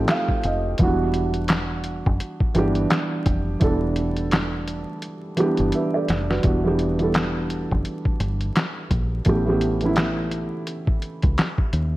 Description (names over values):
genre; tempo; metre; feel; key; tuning
lo-fi hip hop; 85 BPM; 4/4; swing 59% on 16ths; E minor; A4 = 440 Hz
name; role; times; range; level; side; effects
felt-muted upright piano; accompaniment; 0.0-12.0 s; E3 to G5; -23 LUFS; right 1 dB; cassette tape, low-pass filter
deep dub fingered electric bass; bass; 0.0-12.0 s; E1 to D#2; -25 LUFS; equal; none
lo-fi sampler-style drum kit; drums; 0.1-11.9 s; handclaps, hi-hat, kick drum, snare drum; -22 LUFS; equal; none
room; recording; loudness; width
light reverb, digital ambience; vinyl crackle; -20 LUFS; side -17 dB against mid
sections
0.0-6.4 A section; 6.4-12.0 B section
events
felt piano fill 0.0-0.8; drum fill 5.0-6.4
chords
0.0 F9; 0.8 Em7; 9.3 A7